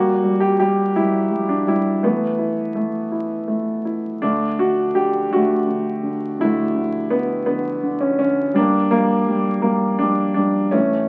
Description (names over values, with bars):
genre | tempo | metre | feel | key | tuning
folk | 55 BPM (dotted quarters) | 6/8 | straight | D major | A4 = 440 Hz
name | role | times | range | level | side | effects
clear grand piano | melody | 0.0-11.1 s | D3 to G4 | -20 LUFS | equal | none
woody fretless electric bass | bass | 4.2-11.1 s | G1 to D2 | -47 LUFS | equal | none
room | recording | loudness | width
wet small room reverb, RT60 0.5 s | very old 78 rpm record, vinyl crackle | -20 LUFS | mono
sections
0.0-11.1 A section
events
none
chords
0.0 Gm; 2.0 Asus2; 4.2 Dsus2; 8.6 Gm